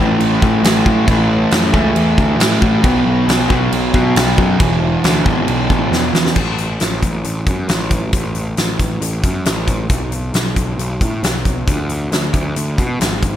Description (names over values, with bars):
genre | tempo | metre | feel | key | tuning
quiet-loud alternative rock | 136 BPM | 4/4 | straight | unclear | A4 = 440 Hz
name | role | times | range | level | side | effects
fuzz guitar | riff | 0.0-6.4 s | E2 to B3 | -15 LUFS | equal | distortion
fuzz picked electric bass | bass | 0.0-13.4 s | E1 to B2 | -19 LUFS | equal | overdrive
huge arena drum kit | drums | 0.2-13.3 s | crash cymbal, hi-hat, kick drum, snare drum | -17 LUFS | equal | none
room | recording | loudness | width
little or no reverb | none | -13 LUFS | side -11 dB against mid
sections
0.0-6.4 A section; 6.4-13.4 B section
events
drum fill 5.9-6.4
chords
0.0 A5; 2.8 B5; 4.6 E5; 6.4 N.C.; 11.7 G#(b5, no3)